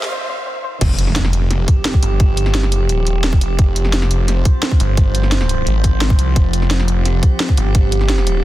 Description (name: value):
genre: dark technical drum and bass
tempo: 173 BPM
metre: 4/4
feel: straight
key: unclear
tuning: A4 = 440 Hz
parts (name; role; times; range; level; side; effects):
- metallic inharmonic drone; sustained chords; 0.0-8.4 s; F3 to C5; -23 LUFS; right 1 dB; chorus, built-in reverb, sidechain pumping
- drum and bass drum kit; drums; 0.0-8.3 s; crash cymbal, hi-hat, snare drum; -22 LUFS; equal; none
- riser and impact; sound effects; 0.0-2.2 s; none; -23 LUFS; equal; none
- soft round pluck; arpeggios; 0.1-0.7 s; C5; -28 LUFS; left 1 dB; wide subtle chorus, sidechain pumping, tape echo
- snarling distorted saw bass; bass; 0.8-8.4 s; Eb1 to C2; -16 LUFS; equal; distortion, tube saturation, sidechain pumping
- electronic kick drum; drums; 0.8-7.8 s; none; -13 LUFS; equal; none
room: digital ambience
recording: dense, heavily limited modern master, high-pass filter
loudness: -13 LUFS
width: side -15 dB against mid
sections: 0.8-8.4 A section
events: break 0.1-0.8; drop 0.8-8.4; impact 0.8-2.2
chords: 0.0 N.C.; 0.8 Fsus2